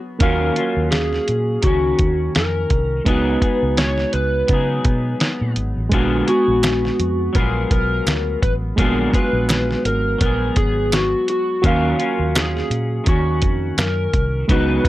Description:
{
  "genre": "indie pop, bedroom pop",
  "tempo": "84 BPM",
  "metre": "4/4",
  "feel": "swing 55% on 16ths",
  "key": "unclear",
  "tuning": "A4 = 440 Hz",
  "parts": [
    { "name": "electric guitar at the edge of break-up", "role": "accompaniment", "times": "0.0-14.9 s", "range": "A#2 to G#4", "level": "-25 LUFS", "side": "left 3 dB", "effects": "analog chorus, vibrato effect" },
    { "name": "reed electric piano", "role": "accompaniment", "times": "0.0-14.9 s", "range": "G#3 to E#5", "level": "-24 LUFS", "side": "right 3 dB", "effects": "cassette tape" },
    { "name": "electric slide guitar", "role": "melody", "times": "0.2-14.9 s", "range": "F#4 to C#5", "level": "-22 LUFS", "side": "left 1 dB", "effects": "lush chorus" },
    { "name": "vintage muted fingered electric bass", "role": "bass", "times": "0.2-14.8 s", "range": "G#1 to C#3", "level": "-22 LUFS", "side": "equal", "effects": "none" },
    { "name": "lo-fi sampler-style drum kit", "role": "drums", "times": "0.2-14.9 s", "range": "hi-hat, kick drum, snare drum", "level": "-19 LUFS", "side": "equal", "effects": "vintage 12-bit sampler grit" },
    { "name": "group handclap", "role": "percussion", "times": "6.6-14.0 s", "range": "none", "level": "-28 LUFS", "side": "right 2 dB", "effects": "none" }
  ],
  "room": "light reverb",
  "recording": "dry, gritty hardware recording",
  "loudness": "-16 LUFS",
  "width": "side -15 dB against mid",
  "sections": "0.0-14.9 A section",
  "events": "none",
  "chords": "0.2 D#m9; 3.1 C#9sus4; 5.9 A#7b9b13; 11.6 D#m9"
}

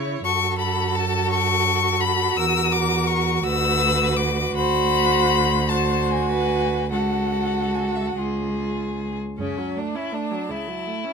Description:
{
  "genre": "classical, slow romantic movement for string quartet",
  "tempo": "48-59 BPM (dotted quarters)",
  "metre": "6/8",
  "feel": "rubato",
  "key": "F# minor",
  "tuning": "A4 = 442 Hz",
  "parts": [
    { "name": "rich violin", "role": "second line", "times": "0.0-11.1 s", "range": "C#4 to C#5", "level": "-27 LUFS", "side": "left 2 dB", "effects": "none" },
    { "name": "clear viola", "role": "accompaniment", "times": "0.0-11.1 s", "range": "C#3 to F#4", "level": "-26 LUFS", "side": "right 5 dB", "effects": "none" },
    { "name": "rich cello", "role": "bass", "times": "0.0-11.1 s", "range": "C#2 to C#3", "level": "-25 LUFS", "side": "right 2 dB", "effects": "none" },
    { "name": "rich violin", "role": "melody", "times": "0.2-11.1 s", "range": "E5 to E6", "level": "-23 LUFS", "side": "left 8 dB", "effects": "none" }
  ],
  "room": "little or no reverb",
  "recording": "close, detailed microphones",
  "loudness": "-19 LUFS",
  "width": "side -5 dB against mid",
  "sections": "0.0-9.4 A section; 9.4-11.1 B section",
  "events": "none",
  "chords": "0.2 F#m; 2.4 F#7/E; 3.4 Bm/D; 6.9 F#m/C#; 8.2 C#; 9.4 F#m"
}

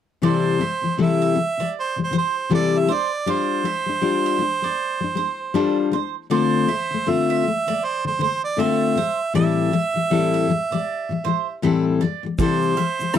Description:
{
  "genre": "acoustic pop",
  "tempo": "79 BPM",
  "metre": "4/4",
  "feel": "swing 60% on 16ths",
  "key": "C major",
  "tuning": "A4 = 442 Hz",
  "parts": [
    { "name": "picked steel-string acoustic guitar", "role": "accompaniment", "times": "0.2-13.2 s", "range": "A2 to C5", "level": "-20 LUFS", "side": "left 5 dB", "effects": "none" },
    { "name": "bowl-back mandolin", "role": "arpeggios", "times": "0.2-13.1 s", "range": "A4 to E5", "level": "-30 LUFS", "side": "right 17 dB", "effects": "none" },
    { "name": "clear harmonica", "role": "melody", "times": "0.3-13.2 s", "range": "C5 to E5", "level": "-23 LUFS", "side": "right 5 dB", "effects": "none" },
    { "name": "natural country drum kit", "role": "drums", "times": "12.4-13.2 s", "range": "kick drum, rim click, shaker", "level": "-22 LUFS", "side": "right 2 dB", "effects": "none" }
  ],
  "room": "little or no reverb",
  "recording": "dry, close 1970s-style studio recording",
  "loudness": "-19 LUFS",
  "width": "side -9 dB against mid",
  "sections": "0.2-13.2 A section",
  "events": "none",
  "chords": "0.2 C6; 2.9 G7sus4; 6.3 Dm7; 9.0 Am7; 12.4 C6"
}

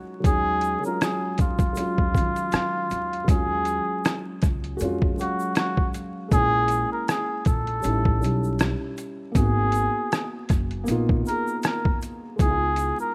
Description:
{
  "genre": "lo-fi hip hop",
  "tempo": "79 BPM",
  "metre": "4/4",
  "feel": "swing 55% on 16ths",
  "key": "Eb minor",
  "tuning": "A4 = 441 Hz",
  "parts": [
    { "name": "felt-muted upright piano", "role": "accompaniment", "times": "0.0-13.1 s", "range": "Gb3 to F5", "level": "-32 LUFS", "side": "equal", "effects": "none" },
    { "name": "upright bass", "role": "bass", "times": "0.2-12.9 s", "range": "Gb1 to Eb3", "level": "-30 LUFS", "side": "equal", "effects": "none" },
    { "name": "trip hop sampler-style drum kit", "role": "drums", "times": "0.2-13.0 s", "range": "hi-hat, kick drum, rim click", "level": "-26 LUFS", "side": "equal", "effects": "overdrive" },
    { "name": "trumpet with cup mute", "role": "melody", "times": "0.3-13.1 s", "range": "F4 to Bb4", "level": "-28 LUFS", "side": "equal", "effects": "none" },
    { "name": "egg shaker", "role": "percussion", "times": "0.3-13.1 s", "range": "none", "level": "-49 LUFS", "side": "equal", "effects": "none" }
  ],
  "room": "small room ambience",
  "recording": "rough home demo mix, vinyl crackle",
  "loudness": "-24 LUFS",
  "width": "mono",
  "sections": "0.0-3.3 A section; 3.3-13.1 B section",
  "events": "none",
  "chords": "0.0 Ebm11; 6.3 Bbm7b5; 7.8 A7#11; 9.4 Abm9; 12.4 Db7"
}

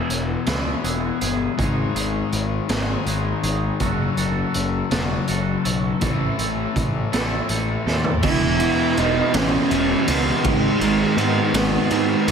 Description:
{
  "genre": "quiet-loud alternative rock",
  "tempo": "54 BPM (dotted quarters)",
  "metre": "6/8",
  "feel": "straight",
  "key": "E major",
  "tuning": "A4 = 441 Hz",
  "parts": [
    { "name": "twangy electric guitar", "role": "arpeggios", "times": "0.0-8.2 s", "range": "F#3 to A4", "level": "-30 LUFS", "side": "right 7 dB", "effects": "lush chorus, slapback echo" },
    { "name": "crunchy overdriven guitar", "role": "riff", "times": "0.0-12.3 s", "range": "E2 to A3", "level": "-24 LUFS", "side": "left 8 dB", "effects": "spring reverb" },
    { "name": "fuzz picked electric bass", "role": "bass", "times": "0.1-12.3 s", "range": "E1 to G#2", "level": "-26 LUFS", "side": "right 1 dB", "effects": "overdrive" },
    { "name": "raw garage drum kit", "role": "drums", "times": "0.1-12.3 s", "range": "crash cymbal, hi-hat, kick drum, ride cymbal, snare drum, toms", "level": "-24 LUFS", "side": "right 1 dB", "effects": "none" },
    { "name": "warm cello", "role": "melody", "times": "8.2-12.3 s", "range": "G#3 to E4", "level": "-23 LUFS", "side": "right 4 dB", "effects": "slapback echo" },
    { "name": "distorted electric guitar", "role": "riff", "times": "8.2-12.3 s", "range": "E2 to G#3", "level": "-25 LUFS", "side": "right 13 dB", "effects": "distortion" },
    { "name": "raw garage guitar", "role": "riff", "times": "8.2-12.3 s", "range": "E2 to G#3", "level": "-27 LUFS", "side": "right 3 dB", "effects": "overdrive" }
  ],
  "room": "light reverb",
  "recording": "none",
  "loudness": "-18 LUFS",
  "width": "side -6 dB against mid",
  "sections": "0.0-8.2 A section; 8.2-12.3 B section",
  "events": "drum fill 7.9-8.2",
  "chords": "0.0 E; 1.6 G#m; 3.8 F#m; 6.0 Am; 8.2 E5; 10.4 G#m"
}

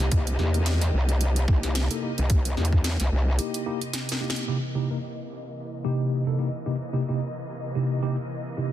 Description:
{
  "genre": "glitch hop",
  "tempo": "110 BPM",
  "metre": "4/4",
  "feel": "swing 57% on 16ths",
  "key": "unclear",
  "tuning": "A4 = 440 Hz",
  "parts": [
    { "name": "warm studio string section", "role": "sustained chords", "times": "0.0-8.7 s", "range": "C3 to D#5", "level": "-34 LUFS", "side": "equal", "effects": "vintage 12-bit sampler grit, sidechain pumping, low-pass filter" },
    { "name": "mellow tine electric piano", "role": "stabs", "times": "0.0-8.7 s", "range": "C3 to Bb4", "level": "-29 LUFS", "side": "equal", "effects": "medium stereo tremolo, vintage 12-bit sampler grit, sidechain pumping, low-pass filter" },
    { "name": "growl bass", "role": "bass", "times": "0.0-3.4 s", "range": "Bb1 to E2", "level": "-23 LUFS", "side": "equal", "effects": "chorus, overdrive" },
    { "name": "drum and bass drum kit", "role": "drums", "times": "0.0-4.5 s", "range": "hi-hat, snare drum", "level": "-32 LUFS", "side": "right 1 dB", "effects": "overdrive, low-pass filter on hats, studio reverb, low-pass filter on snare" },
    { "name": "electronic kick drum", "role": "drums", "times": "0.1-2.8 s", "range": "none", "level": "-21 LUFS", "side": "equal", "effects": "overdrive, studio reverb" }
  ],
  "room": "little or no reverb",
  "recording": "dense, heavily limited modern master",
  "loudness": "-23 LUFS",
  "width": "side -12 dB against mid",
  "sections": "0.0-4.5 A section; 4.5-8.7 B section",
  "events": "break 3.4-4.5; drum fill 3.9-4.5; band accent 4.3; filter sweep on tine electric piano 4.5-8.7",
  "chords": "0.0 C7#9"
}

